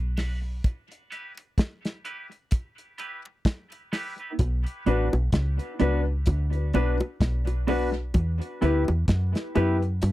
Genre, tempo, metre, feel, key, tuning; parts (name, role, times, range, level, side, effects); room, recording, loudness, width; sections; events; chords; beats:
dub reggae; 64 BPM; 4/4; swing 56% on 16ths; A4 = 437 Hz
deep dub fingered electric bass; bass; 0.0-10.1 s; A1 to G2; -24 LUFS; equal
clean electric guitar; accompaniment; 0.2-9.9 s; B3 to B4; -30 LUFS; right 3 dB; high-pass filter, tape echo
warm upright piano; stabs; 0.2-9.8 s; D4 to B4; -31 LUFS; left 5 dB; high-pass filter, tape echo
cloth-damped thuddy drum kit; drums; 0.2-10.1 s; hi-hat, kick drum, snare drum; -24 LUFS; equal
bongos; percussion; 0.2-10.1 s; -34 LUFS; equal; high-pass filter on perc, tape echo
little or no reverb; dry, close 1970s-style studio recording; -24 LUFS; side -16 dB against mid
0.0-10.1 A section
filter sweep 0.0-4.4, 8.1-10.1; break 0.6-4.4
0.0 Bm; 0.6 Em; 4.4 Bm; 8.1 Em
| 0.64 1.57 2.51 3.45 | 4.39 5.33 6.27 7.21 | 8.14 9.08 10.02